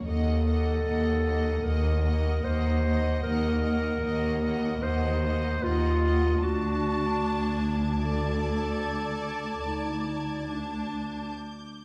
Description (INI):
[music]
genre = cinematic, suspense film score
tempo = 75 BPM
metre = 4/4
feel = straight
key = unclear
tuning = A4 = 441 Hz
[part]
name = warm studio violin section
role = melody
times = 0.0-11.3 s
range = Gb5 to A5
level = -43 LUFS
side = equal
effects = none
[part]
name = clear studio violin section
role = second line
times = 0.0-11.3 s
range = Eb5 to A5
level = -40 LUFS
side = equal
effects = none
[part]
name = rich studio viola section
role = accompaniment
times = 0.0-11.3 s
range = Bb3 to D5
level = -37 LUFS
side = equal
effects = none
[part]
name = dark studio cello section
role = bass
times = 0.0-11.3 s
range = D2 to Eb2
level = -34 LUFS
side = equal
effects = none
[part]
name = rich studio double bass section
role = bass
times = 0.0-11.3 s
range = D2 to Eb2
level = -32 LUFS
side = equal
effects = none
[part]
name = warm clarinet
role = second line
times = 0.1-11.3 s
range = D4 to C5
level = -34 LUFS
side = equal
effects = none
[part]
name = clear studio violin section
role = texture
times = 0.1-11.8 s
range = D6 to Bb6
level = -48 LUFS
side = equal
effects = none
[sound]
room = wet recital hall reverb, RT60 1.5 s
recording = recorded in a church or concert hall, vinyl crackle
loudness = -28 LUFS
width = mono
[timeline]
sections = 0.0-11.8 A section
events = break 11.3-11.8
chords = 0.1 Ebm; 6.4 D